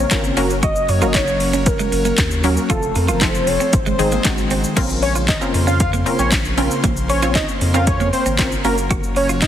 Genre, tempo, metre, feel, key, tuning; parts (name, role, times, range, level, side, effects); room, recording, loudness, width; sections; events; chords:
dance-pop; 116 BPM; 4/4; straight; Bb minor; A4 = 440 Hz
warm velvety synth lead; melody; 0.0-4.2 s; A4 to Eb5; -22 LUFS; equal; chorus, ping-pong delay
airy breathy pad; sustained chords; 0.0-9.5 s; Db3 to C5; -25 LUFS; left 2 dB; chorus, sidechain pumping
clean electric guitar; riff; 0.0-9.5 s; Ab3 to Gb4; -25 LUFS; right 7 dB; lush chorus
saturated sub bass; bass; 0.0-9.4 s; F1 to Gb2; -22 LUFS; equal; sidechain pumping
wide unison pluck; accompaniment; 0.1-9.4 s; Eb3 to Db5; -23 LUFS; left 1 dB; auto-pan, sidechain pumping
house drum kit; drums; 0.1-9.5 s; crash cymbal, handclaps, hi-hat, kick drum, shaker, snare drum; -20 LUFS; equal; overdrive
fat analog lead; melody; 5.0-9.5 s; Bb4 to F5; -22 LUFS; equal; chorus, phaser, sidechain pumping, ping-pong delay
moderate lush hall reverb, RT60 1.9 s; heavily compressed radio sound, multiband compression; -15 LUFS; side -10 dB against mid
0.0-4.8 A section; 4.8-9.5 B section
0.4 Gb; 2.7 F; 3.7 Ab; 4.8 Bbmadd9; 8.6 Gb